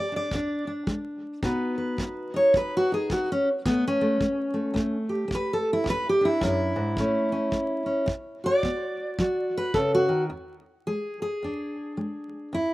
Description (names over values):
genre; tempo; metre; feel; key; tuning
acoustic country blues, solo or duo; 108 BPM; 4/4; swing 60% on 8ths; E mixolydian; A4 = 440 Hz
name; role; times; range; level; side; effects
fingerpicked steel-string acoustic guitar; melody; 0.0-12.7 s; E2 to D5; -24 LUFS; equal; none
kick drum; drums; 0.3-9.9 s; none; -32 LUFS; equal; none
room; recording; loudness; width
little or no reverb; recorded outdoors, with no room sound, vinyl crackle; -24 LUFS; side -17 dB against mid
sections
0.0-10.3 A section; 10.3-12.7 B section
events
steel-string acoustic guitar solo 0.0-10.3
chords
0.0 E7; 1.4 B; 3.6 A; 5.9 E7(no3); 7.0 A; 8.1 B5; 10.3 E7